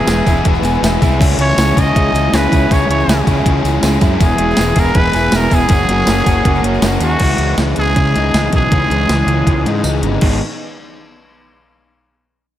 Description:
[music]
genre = indie rock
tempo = 160 BPM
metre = 4/4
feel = straight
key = unclear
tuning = A4 = 440 Hz
[part]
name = growling trumpet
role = melody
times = 0.0-9.8 s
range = F#4 to D#5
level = -18 LUFS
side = right 1 dB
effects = none
[part]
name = soft string machine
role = sustained chords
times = 0.0-7.2 s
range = E4 to E6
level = -27 LUFS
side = right 1 dB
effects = none
[part]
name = crunchy overdriven guitar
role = riff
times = 0.0-10.4 s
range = E2 to G#4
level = -21 LUFS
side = right 7 dB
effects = wide subtle chorus
[part]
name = overdriven electric guitar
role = riff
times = 0.0-10.4 s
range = D#3 to G#4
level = -19 LUFS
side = left 7 dB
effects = none
[part]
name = fuzz fingered electric bass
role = bass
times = 0.1-10.4 s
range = E1 to C#3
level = -17 LUFS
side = equal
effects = overdrive
[part]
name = crisp 8-bit digital drum machine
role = drums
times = 0.1-10.3 s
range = crash cymbal, hi-hat, kick drum, snare drum, tambourine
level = -16 LUFS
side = equal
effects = overdrive
[part]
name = tambourine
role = percussion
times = 0.1-7.2 s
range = none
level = -34 LUFS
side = right 5 dB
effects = none
[sound]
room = moderate lush hall reverb, RT60 1.8 s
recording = big arena sound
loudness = -11 LUFS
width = side -12 dB against mid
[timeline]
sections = 0.0-7.2 A section; 7.2-10.2 B section; 10.2-11.7 C section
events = kick and snare drop out 7.0, 9.8-10.2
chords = 0.0 E; 1.2 C#madd9; 4.2 E; 5.7 F#add9; 7.2 C#madd9; 10.2 G#m

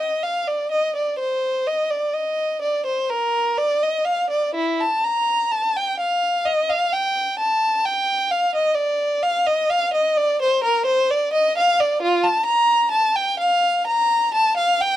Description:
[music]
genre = classical, baroque-style suite movement for unaccompanied violin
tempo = 64 BPM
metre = 4/4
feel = rubato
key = Bb major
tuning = A4 = 441 Hz
[part]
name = rich violin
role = solo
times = 0.0-15.0 s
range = E4 to Bb5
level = -18 LUFS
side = equal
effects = none
[sound]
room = light reverb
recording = dark, warm production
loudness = -18 LUFS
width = side -12 dB against mid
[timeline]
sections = 0.0-15.0 A section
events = none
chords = none

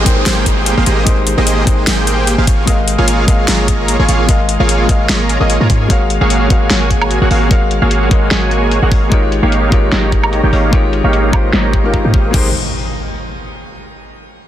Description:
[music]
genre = future bass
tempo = 149 BPM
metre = 4/4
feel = swing 54% on 16ths, half-time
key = Ab major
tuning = A4 = 440 Hz
[part]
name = felt-muted upright piano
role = accompaniment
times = 0.0-12.5 s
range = Ab3 to G5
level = -20 LUFS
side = left 3 dB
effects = sidechain pumping, digital delay
[part]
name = dense compressed supersaw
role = riff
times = 0.0-12.5 s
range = Bb3 to Bb5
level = -16 LUFS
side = right 2 dB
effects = cassette tape, sidechain pumping, low-pass filter, digital delay
[part]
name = warm 808-style bass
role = bass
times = 0.0-12.5 s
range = Ab1 to Ab2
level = -15 LUFS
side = equal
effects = sidechain pumping
[part]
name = downlifter and impact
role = sound effects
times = 0.0-2.7, 12.3-14.0 s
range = none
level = -24 LUFS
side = right 1 dB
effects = none
[part]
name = dubstep drum kit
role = drums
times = 0.1-12.4 s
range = crash cymbal, hi-hat, snare drum, woodblock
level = -20 LUFS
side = equal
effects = low-pass filter on hats, low-pass filter on snare, low-pass filter on perc, low-pass filter on cymbals
[part]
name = electronic kick drum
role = drums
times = 0.1-12.4 s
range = none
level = -13 LUFS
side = equal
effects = none
[sound]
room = light reverb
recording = dense, heavily limited modern master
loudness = -10 LUFS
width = side -12 dB against mid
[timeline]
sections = 0.0-12.3 A section; 12.3-14.0 B section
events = filter sweep on drum 0.0-12.3; filter sweep on 808-style bass 0.0-12.3; filter sweep on supersaw synth 0.0-12.3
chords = 0.0 Abmaj9; 2.5 Db6/Ab; 5.9 Gbmaj9/Ab; 9.1 Eb9/Ab; 12.3 Abmaj9

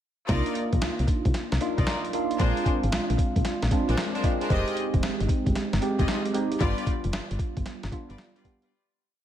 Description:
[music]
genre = R&B, new jack swing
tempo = 114 BPM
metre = 4/4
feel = swing 66% on 16ths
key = C minor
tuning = A4 = 439 Hz
[part]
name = bell-like tine electric piano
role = accompaniment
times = 0.3-8.7 s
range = G3 to G4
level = -28 LUFS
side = right 2 dB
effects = phaser
[part]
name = bright studio string section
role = stabs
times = 0.3-8.8 s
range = D4 to Eb5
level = -34 LUFS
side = left 3 dB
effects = ping-pong delay
[part]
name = solid FM bass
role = bass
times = 0.3-8.2 s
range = F1 to C2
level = -27 LUFS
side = equal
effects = none
[part]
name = boom bap sampler-style drum kit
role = drums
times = 0.3-8.7 s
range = hi-hat, kick drum, snare drum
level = -27 LUFS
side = equal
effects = gated reverb
[sound]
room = little or no reverb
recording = none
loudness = -23 LUFS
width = side -11 dB against mid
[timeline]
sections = 0.3-8.7 verse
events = fade-out 6.6-8.7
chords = 0.3 Cm11; 2.4 Bb9; 4.5 Fm9; 6.6 G7

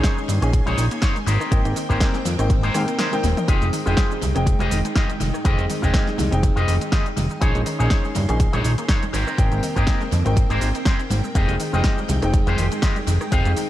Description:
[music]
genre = nu-disco, nu disco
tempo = 122 BPM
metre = 4/4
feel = swing 55% on 16ths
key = F minor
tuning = A4 = 441 Hz
[part]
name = dark grand piano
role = accompaniment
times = 0.0-13.7 s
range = Ab3 to G5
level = -28 LUFS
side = equal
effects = tape echo
[part]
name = string machine, full ensemble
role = sustained chords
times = 0.0-13.7 s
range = Ab3 to C6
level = -31 LUFS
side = equal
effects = ensemble chorus, sidechain pumping
[part]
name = wide unison pluck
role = arpeggios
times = 0.0-13.6 s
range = Eb3 to Eb4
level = -31 LUFS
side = left 1 dB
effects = sidechain pumping, tape echo
[part]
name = electric guitar with an envelope filter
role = riff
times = 0.0-13.5 s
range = Eb4 to F5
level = -28 LUFS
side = left 2 dB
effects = lush chorus, tape echo
[part]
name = electronic kick drum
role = drums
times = 0.0-13.4 s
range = none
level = -20 LUFS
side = equal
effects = studio reverb
[part]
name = house drum kit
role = drums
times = 0.0-13.7 s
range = cabasa, hi-hat, rim click, snare drum, toms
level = -29 LUFS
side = equal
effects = studio reverb, tape echo
[part]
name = fat analog bass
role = bass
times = 0.3-13.5 s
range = Eb1 to Ab2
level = -21 LUFS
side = equal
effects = sidechain pumping
[part]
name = maracas and congas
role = percussion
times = 3.5-13.7 s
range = none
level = -34 LUFS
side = right 2 dB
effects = none
[sound]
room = little or no reverb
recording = echo-heavy mix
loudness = -18 LUFS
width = side -14 dB against mid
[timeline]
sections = 0.0-13.7 A section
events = kick drops out 3.0-3.5; drum fill 3.2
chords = 0.0 Bbm11; 1.3 Abmaj9; 3.5 Fm9; 7.4 Bbm11; 9.1 Abmaj9; 11.4 Fm9

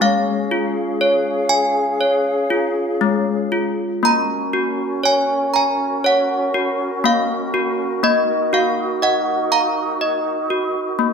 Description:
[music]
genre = children's music, lullaby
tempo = 60 BPM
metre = 4/4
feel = straight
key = F# major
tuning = A4 = 441 Hz
[part]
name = desk bells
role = melody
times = 0.0-11.1 s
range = G#3 to A#5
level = -17 LUFS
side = equal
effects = none
[part]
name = breathy mellow small flute group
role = sustained chords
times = 0.0-11.1 s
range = C#4 to E#5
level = -24 LUFS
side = left 1 dB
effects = none
[sound]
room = wet recital hall reverb, RT60 1.6 s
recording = recorded in a church or concert hall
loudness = -16 LUFS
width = side -6 dB against mid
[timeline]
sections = 0.0-4.0 A section; 4.0-11.1 B section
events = none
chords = 0.0 C#; 4.0 F#; 8.0 D#m

